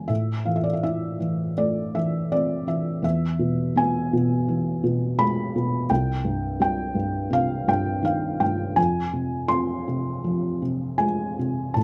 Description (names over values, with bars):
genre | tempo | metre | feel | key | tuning
classical, lyrical solo piano | 82 BPM | 4/4 | rubato | unclear | A4 = 440 Hz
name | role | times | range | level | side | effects
felt-muted upright piano | solo | 0.0-11.8 s | C2 to C6 | -24 LUFS | equal | none
room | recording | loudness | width
moderate small room reverb, RT60 0.5 s | dark, warm production | -24 LUFS | mono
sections
0.1-11.8 A section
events
none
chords
0.1 Am; 3.0 E; 5.9 Cm; 8.8 Fm